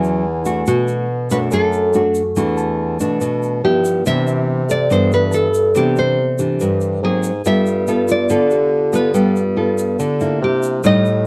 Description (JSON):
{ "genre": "bossa nova", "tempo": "142 BPM", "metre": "4/4", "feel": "straight", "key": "C major from 4.1 s", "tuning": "A4 = 436 Hz", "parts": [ { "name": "bright tine electric piano", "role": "accompaniment", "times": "0.0-10.4 s", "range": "F4 to A5", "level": "-28 LUFS", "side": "equal", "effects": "none" }, { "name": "nylon-string guitar", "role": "accompaniment", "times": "0.0-11.3 s", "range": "F#2 to A4", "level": "-20 LUFS", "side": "equal", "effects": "none" }, { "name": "mellow bassoon", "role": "bass", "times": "0.0-11.3 s", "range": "E2 to D3", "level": "-23 LUFS", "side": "equal", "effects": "none" }, { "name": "egg shaker", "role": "percussion", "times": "0.0-11.3 s", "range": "none", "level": "-37 LUFS", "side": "equal", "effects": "none" }, { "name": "nylon-string guitar", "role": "melody", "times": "0.7-11.3 s", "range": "F#4 to E5", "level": "-21 LUFS", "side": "equal", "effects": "none" } ], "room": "light reverb", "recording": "dark, warm production", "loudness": "-17 LUFS", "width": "mono", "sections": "0.0-4.1 A section; 4.1-11.3 B section", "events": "none", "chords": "0.0 A6; 0.7 Bm7; 2.4 E9sus4; 3.6 G13; 4.1 Cmaj9; 7.0 Ab9; 7.5 G9; 10.4 C9" }